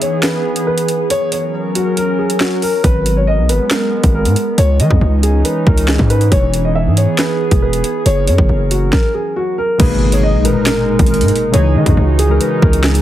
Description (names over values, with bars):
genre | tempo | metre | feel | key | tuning
hip hop, drill | 138 BPM | 4/4 | half-time | G# minor | A4 = 438 Hz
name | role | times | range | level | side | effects
dark grand piano | melody | 0.0-13.0 s | F#4 to E5 | -18 LUFS | left 1 dB | digital delay
warbly tape-like pad | sustained chords | 0.0-13.0 s | E3 to A#4 | -19 LUFS | right 2 dB | chorus, built-in reverb
drill drum kit | drums | 0.0-13.0 s | crash cymbal, handclaps, hi-hat, kick drum, snare drum | -16 LUFS | equal | none
distorted 808-style bass | bass | 2.8-13.0 s | E1 to E3 | -14 LUFS | equal | distortion
warbly lo-fi synth keys | accompaniment | 9.8-13.0 s | A#2 to A#4 | -17 LUFS | left 1 dB | chorus
impact | sound effects | 9.8-11.5 s | none | -23 LUFS | equal | none
room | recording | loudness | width
little or no reverb | heavily compressed radio sound | -11 LUFS | side -12 dB against mid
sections
0.0-9.8 A section; 9.8-13.0 B section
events
break 0.0-2.8; stop 8.9-9.8; impact 9.8-11.5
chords
0.0 E; 1.1 F#; 2.8 G#madd9; 4.6 C#madd9; 6.3 E; 8.1 F#; 9.8 G#madd9; 11.5 C#madd9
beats
0.23 0.67 | 1.10 1.54 1.97 2.41 | 2.84 3.27 3.71 4.14 | 4.58 5.01 5.45 5.88 | 6.32 6.75 7.19 7.62 | 8.06 8.49 8.93 9.36 | 9.80 10.23 10.67 11.10 | 11.54 11.97 12.41 12.84